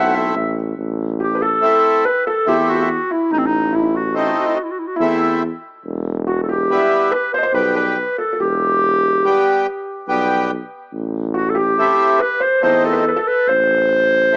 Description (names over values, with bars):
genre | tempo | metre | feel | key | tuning
klezmer | 71 BPM | 3/4 | straight | A dorian sharp4 | A4 = 441 Hz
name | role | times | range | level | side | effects
warm clarinet | melody | 0.0-14.4 s | C4 to F#5 | -16 LUFS | equal | none
felt-muted upright piano | second line | 0.0-14.4 s | D#4 to F#5 | -23 LUFS | equal | none
accordion | accompaniment | 0.0-14.4 s | G3 to G4 | -19 LUFS | equal | none
mellow tuba | bass | 0.0-14.4 s | E1 to E2 | -21 LUFS | equal | none
room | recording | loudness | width
moderate spring reverb, RT60 2.3 s | home recording on cassette, small speaker sound | -14 LUFS | side -38 dB against mid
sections
0.8-14.4 A section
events
none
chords
0.0 Am; 5.9 Em; 10.9 Am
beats
| 0.77 1.62 2.47 | 3.31 4.16 5.01 | 5.85 6.70 7.54 | 8.39 9.24 10.09 | 10.93 11.78 12.62 | 13.47 14.32